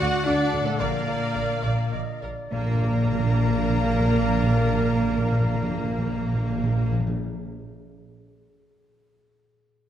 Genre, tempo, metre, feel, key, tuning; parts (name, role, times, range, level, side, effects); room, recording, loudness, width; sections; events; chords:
cinematic; 98-117 BPM; 3/4; straight; Bb major; A4 = 436 Hz
rich studio violin section; melody; 0.0-6.9 s; A4 to Bb5; -37 LUFS; left 3 dB
clear oboe; second line; 0.0-6.9 s; F5 to F#5; -37 LUFS; right 2 dB
concert flute; second line; 0.0-6.9 s; A5 to F#6; -40 LUFS; left 2 dB
dark clarinet; second line; 0.0-6.9 s; D5 to F5; -34 LUFS; left 1 dB
rich symphonic violin section; second line; 0.0-7.0 s; F#4 to Bb5; -37 LUFS; left 2 dB
rich symphonic viola section; accompaniment; 0.0-6.9 s; D4 to F#5; -35 LUFS; right 1 dB
mellow French horn section; sustained chords; 0.0-6.9 s; A3 to F#4; -30 LUFS; left 1 dB
concert harp; arpeggios; 0.0-7.4 s; Bb2 to D5; -34 LUFS; left 6 dB
mellow trumpet section; stabs; 0.0-6.9 s; A4 to F#5; -35 LUFS; equal
clear symphonic double bass section; bass; 0.0-6.9 s; Bb1 to D2; -27 LUFS; right 3 dB
rich chamber cello section; bass; 0.0-6.9 s; A3 to F#4; -30 LUFS; right 3 dB
timpani; percussion; 0.8-7.1 s; Bb2; -26 LUFS; left 1 dB
wet concert hall reverb, RT60 1.9 s; -21 LUFS; side -10 dB against mid
0.0-2.5 A section; 2.5-6.2 B section
slowing down 0.0-2.5
0.0 D; 0.8 Bb